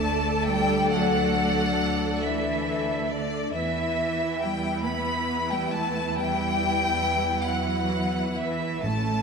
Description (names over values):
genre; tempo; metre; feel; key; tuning
cinematic; 46 BPM (dotted quarters); 6/8; rubato; unclear; A4 = 439 Hz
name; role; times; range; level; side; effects
clear chamber violin section; melody; 0.0-9.2 s; D5 to B5; -30 LUFS; left 1 dB; none
mellow hollow flute section; second line; 0.0-9.2 s; D5 to B5; -30 LUFS; left 3 dB; none
rich studio violin section; second line; 0.0-9.2 s; E4 to D5; -33 LUFS; left 3 dB; none
warm studio viola section; accompaniment; 0.0-9.2 s; E3 to A4; -33 LUFS; right 3 dB; none
mellow French horn section; sustained chords; 0.0-9.2 s; E3 to D4; -33 LUFS; left 3 dB; none
rich studio cello section; bass; 0.0-9.2 s; D3 to B3; -30 LUFS; right 1 dB; none
rich studio double bass section; bass; 0.0-9.2 s; A1 to E2; -33 LUFS; right 5 dB; none
timpani; percussion; 8.8-9.2 s; A2; -28 LUFS; left 1 dB; none
room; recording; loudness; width
wet scoring stage reverb, RT60 1.6 s; dark, warm production; -23 LUFS; side -5 dB against mid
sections
0.0-9.2 A section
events
none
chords
0.0 D; 3.5 Em